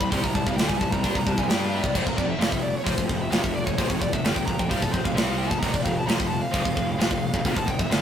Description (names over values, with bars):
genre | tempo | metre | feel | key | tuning
heavy metal | 131 BPM | 4/4 | straight | unclear | A4 = 437 Hz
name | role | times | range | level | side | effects
nasal lead guitar with a parked wah | melody | 0.0-8.0 s | A4 to C6 | -30 LUFS | equal | overdrive
tight distorted guitar | riff | 0.0-8.0 s | F2 to G4 | -29 LUFS | left 1 dB | distortion
fuzz fingered electric bass | bass | 0.0-8.0 s | F1 to G2 | -28 LUFS | equal | overdrive
tight metal drum kit | drums | 0.0-8.0 s | crash cymbal, hi-hat, kick drum, snare drum | -25 LUFS | equal | none
room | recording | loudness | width
moderate stone room reverb, RT60 1.0 s | rough rehearsal-room recording, warm saturation | -22 LUFS | side -9 dB against mid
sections
0.0-8.0 A section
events
lead electric guitar solo 0.0-8.0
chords
0.0 C5; 1.9 F5